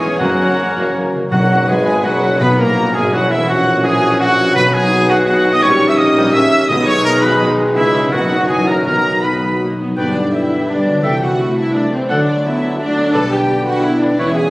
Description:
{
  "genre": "classical, dramatic, fast romantic movement for symphony orchestra",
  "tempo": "168 BPM",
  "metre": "3/4",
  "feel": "straight",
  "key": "B major, G major from 10.0 s",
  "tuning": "A4 = 441 Hz",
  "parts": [
    { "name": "rich symphonic violin section", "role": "melody", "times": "0.0-14.3 s", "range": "A4 to E6", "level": "-24 LUFS", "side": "left 1 dB", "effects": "none" },
    { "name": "clear oboe", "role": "second line", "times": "0.0-14.3 s", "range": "E4 to G5", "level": "-20 LUFS", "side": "equal", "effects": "none" },
    { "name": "flute section", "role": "second line", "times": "0.0-14.5 s", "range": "C5 to G#6", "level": "-24 LUFS", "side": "left 1 dB", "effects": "none" },
    { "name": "mellow clarinet", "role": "second line", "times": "0.0-1.1, 10.0-14.3 s", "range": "C#4 to B4", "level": "-28 LUFS", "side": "equal", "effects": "none" },
    { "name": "rich symphonic violin section", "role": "second line", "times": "0.0-14.5 s", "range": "G#3 to E6", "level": "-28 LUFS", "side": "equal", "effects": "none" },
    { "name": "rich studio viola section", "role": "accompaniment", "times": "0.0-14.5 s", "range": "C#3 to C#5", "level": "-22 LUFS", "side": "equal", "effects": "none" },
    { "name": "bright trombone section", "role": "sustained chords", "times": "0.0-14.5 s", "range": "C3 to B3", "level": "-22 LUFS", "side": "right 1 dB", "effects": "none" },
    { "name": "mellow French horn section", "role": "sustained chords", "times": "0.0-14.5 s", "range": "E3 to B4", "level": "-20 LUFS", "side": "equal", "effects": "none" },
    { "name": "concert harp", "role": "arpeggios", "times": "0.0-14.5 s", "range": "E2 to D#6", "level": "-21 LUFS", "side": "left 1 dB", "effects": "none" },
    { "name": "clear trumpet", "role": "stabs", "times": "0.0-9.6 s", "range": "E4 to E5", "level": "-20 LUFS", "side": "right 1 dB", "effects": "none" },
    { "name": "clear tuba", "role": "bass", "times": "0.0-9.8 s", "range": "E1 to C#2", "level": "-22 LUFS", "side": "right 1 dB", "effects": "none" },
    { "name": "dark symphonic cello section", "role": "bass", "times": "0.0-14.5 s", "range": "E3 to B4", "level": "-24 LUFS", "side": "right 1 dB", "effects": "none" },
    { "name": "rich symphonic double bass section", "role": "bass", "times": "0.0-14.5 s", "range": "E1 to B2", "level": "-26 LUFS", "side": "equal", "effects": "none" },
    { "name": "timpani", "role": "percussion", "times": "0.2-9.4 s", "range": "F#2 to B2", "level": "-23 LUFS", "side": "equal", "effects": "none" }
  ],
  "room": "moderate concert hall reverb, RT60 1.8 s",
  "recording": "recorded on a phone in the room, studio ambience, compression",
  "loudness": "-12 LUFS",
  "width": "side -20 dB against mid",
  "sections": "0.0-1.3 A section; 1.3-10.0 B section; 10.0-14.5 C section",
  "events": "none",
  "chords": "0.2 F#; 1.3 B/F#; 2.4 C#m7; 3.5 F#7/A#; 4.6 B; 5.6 D#7/A#; 6.7 G#m/B; 7.8 C#m; 8.1 B/F#; 8.5 F#7; 8.9 B; 10.0 G; 11.0 Am/C; 12.1 D; 13.1 G/B"
}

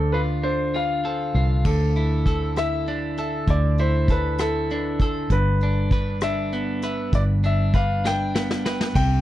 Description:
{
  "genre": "six-eight pop ballad",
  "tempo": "66 BPM (dotted quarters)",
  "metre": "6/8",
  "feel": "straight",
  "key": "unclear",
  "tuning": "A4 = 440 Hz",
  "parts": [
    { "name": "clear concert grand piano", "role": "melody", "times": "0.0-9.2 s", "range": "A4 to G5", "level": "-27 LUFS", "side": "left 2 dB", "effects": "tape echo" },
    { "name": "electric guitar at the edge of break-up", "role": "accompaniment", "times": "0.0-9.2 s", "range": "G2 to B4", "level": "-26 LUFS", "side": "right 1 dB", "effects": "none" },
    { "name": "vintage muted fingered electric bass", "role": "bass", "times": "0.0-9.2 s", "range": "G1 to D2", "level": "-23 LUFS", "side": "equal", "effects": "none" },
    { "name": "vintage brush drum kit", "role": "drums", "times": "1.6-9.1 s", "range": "crash cymbal, hi-hat, kick drum, rim click, snare drum", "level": "-23 LUFS", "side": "equal", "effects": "none" }
  ],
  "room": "studio reverb",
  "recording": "dry, close 1970s-style studio recording",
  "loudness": "-20 LUFS",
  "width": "side -14 dB against mid",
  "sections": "0.0-1.6 A section; 1.6-9.0 B section",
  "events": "drum fill 8.0-9.0",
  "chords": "0.0 Dm; 1.6 Dsus2; 5.3 G"
}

